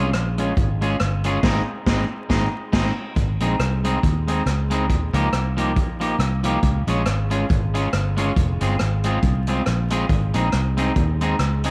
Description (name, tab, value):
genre	ska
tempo	139 BPM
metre	4/4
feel	swing 57% on 8ths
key	Ab major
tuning	A4 = 440 Hz
part	electric guitar at the edge of break-up	accompaniment	0.0-11.7 s	F3 to Ab4	-26 LUFS	equal	none
part	fingered electric bass	bass	0.0-11.7 s	F1 to Eb2	-24 LUFS	equal	tube saturation
part	swinging big-band drum kit	drums	0.1-11.7 s	crash cymbal, hi-hat, kick drum, rim click, snare drum	-26 LUFS	equal	none
room	moderate spring reverb, RT60 1.9 s, studio reverb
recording	vinyl crackle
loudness	-21 LUFS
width	mono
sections	0.0-3.2 A section; 3.2-11.7 B section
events	band accent 1.4-3.2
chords	0.0 Db; 1.4 Ab; 4.9 Ebadd9; 6.6 Db; 8.4 Fm; 10.1 Ab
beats	0.14 0.57 1.00 | 1.44 1.87 2.30 2.73 | 3.17 3.60 4.03 4.47 | 4.90 5.33 5.76 6.20 | 6.63 7.07 7.50 7.93 | 8.36 8.80 9.23 9.66 | 10.10 10.53 10.96 11.39